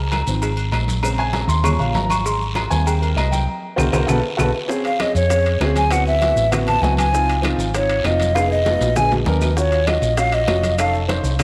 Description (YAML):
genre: Afro-Cuban jazz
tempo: 197 BPM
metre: 4/4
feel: straight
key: unclear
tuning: A4 = 440 Hz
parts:
  - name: hollow-body short-scale fingered electric bass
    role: bass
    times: 0.0-11.4 s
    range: F1 to F2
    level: -23 LUFS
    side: equal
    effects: none
  - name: claves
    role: percussion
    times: 0.1-11.4 s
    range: none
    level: -35 LUFS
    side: equal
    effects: none
  - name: congas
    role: percussion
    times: 0.1-11.4 s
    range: none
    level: -31 LUFS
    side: equal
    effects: none
  - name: cowbell and bongos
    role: percussion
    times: 0.1-11.4 s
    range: none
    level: -33 LUFS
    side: equal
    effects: none
  - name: guiro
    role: percussion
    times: 0.1-11.4 s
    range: none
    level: -36 LUFS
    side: equal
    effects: none
  - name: maracas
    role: percussion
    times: 0.1-11.4 s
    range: none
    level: -39 LUFS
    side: equal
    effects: none
  - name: timbales and agogo bells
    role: percussion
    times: 0.1-11.4 s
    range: none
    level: -30 LUFS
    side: equal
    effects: none
  - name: warm upright piano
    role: accompaniment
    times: 0.3-11.4 s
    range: Db3 to Db6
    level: -26 LUFS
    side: equal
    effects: none
  - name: breathy mellow jazz flute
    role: melody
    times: 4.9-10.9 s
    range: Db5 to A5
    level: -22 LUFS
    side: equal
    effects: none
room: moderate echo chamber reverb, RT60 2.0 s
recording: none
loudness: -18 LUFS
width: mono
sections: 0.0-4.7 A section; 4.7-11.4 A section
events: upright piano solo 0.0-4.7; band accent 3.5-4.7; drum fill 3.8-4.7, 8.4-9.6; flute solo 4.7-11.4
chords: 0.0 Dbmaj7; 1.0 Bbm7; 1.6 Eb7; 2.3 Abmaj9; 3.5 Bbsus2/C; 4.1 B5; 4.7 Dbmaj7; 5.9 D13; 7.1 Dbmaj7; 8.4 Fm7b5; 9.0 Bb7b9; 9.6 Ebm9; 10.8 F7b13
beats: 0.13 0.43 0.73 | 1.04 1.34 1.65 1.95 | 2.26 2.56 2.87 3.17 | 3.48 3.78 4.09 4.39 | 4.70 5.00 5.31 5.61 | 5.92 6.22 6.53 6.83 | 7.14 7.44 7.75 8.05 | 8.36 8.66 8.96 9.27 | 9.57 9.88 10.18 10.49 | 10.79 11.10 11.40